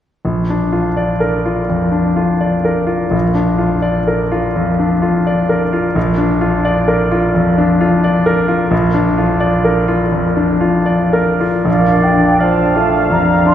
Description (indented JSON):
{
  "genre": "classical",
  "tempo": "85 BPM",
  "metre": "4/4",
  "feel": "rubato",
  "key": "Bb major",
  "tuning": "A4 = 440 Hz",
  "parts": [
    { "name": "clear concert grand piano", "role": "melody", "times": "0.2-13.5 s", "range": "Bb1 to D5", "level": "-12 LUFS", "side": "left 1 dB", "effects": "none" },
    { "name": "mellow large flute ensemble", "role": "second line", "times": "11.7-13.5 s", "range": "F5 to C6", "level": "-17 LUFS", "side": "right 2 dB", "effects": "none" },
    { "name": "warm clarinet", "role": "second line", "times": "11.7-13.5 s", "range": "D4", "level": "-21 LUFS", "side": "right 1 dB", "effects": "none" },
    { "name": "warm oboe", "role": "second line", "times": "11.7-13.5 s", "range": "D5 to F5", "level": "-18 LUFS", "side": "right 2 dB", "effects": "none" },
    { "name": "mellow bassoon", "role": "accompaniment", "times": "11.7-13.5 s", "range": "F3 to Bb3", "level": "-19 LUFS", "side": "right 4 dB", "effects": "none" }
  ],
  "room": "wet cathedral reverb, RT60 6.1 s",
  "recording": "heard from further back in the room",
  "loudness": "-12 LUFS",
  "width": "side -10 dB against mid",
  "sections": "0.3-11.7 A section; 11.7-13.5 B section",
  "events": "none",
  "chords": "0.3 Bb"
}